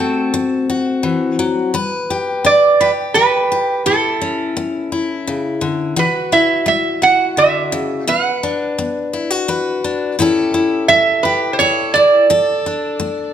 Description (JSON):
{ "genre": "country", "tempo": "85 BPM", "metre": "3/4", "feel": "straight", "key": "D major", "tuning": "A4 = 441 Hz", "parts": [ { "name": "lap resonator guitar", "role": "melody", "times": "0.0-13.3 s", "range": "A4 to F#5", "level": "-13 LUFS", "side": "right 3 dB", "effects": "none" }, { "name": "picked steel-string acoustic guitar", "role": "accompaniment", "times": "0.0-13.3 s", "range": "A2 to B4", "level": "-18 LUFS", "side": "left 4 dB", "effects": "none" } ], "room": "moderate recital hall reverb, RT60 1.7 s", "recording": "close, detailed microphones", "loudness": "-13 LUFS", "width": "side -9 dB against mid", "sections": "0.0-13.3 A section", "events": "none", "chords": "0.0 D7; 1.7 G; 3.9 A; 6.0 Eadd9; 8.1 Bm; 10.2 A7; 12.3 D5", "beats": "0.33 1.04 | 1.74 2.45 3.15 | 3.85 4.56 5.26 | 5.97 6.67 7.37 | 8.08 8.78 9.48 | 10.19 10.89 11.59 | 12.29 13.00" }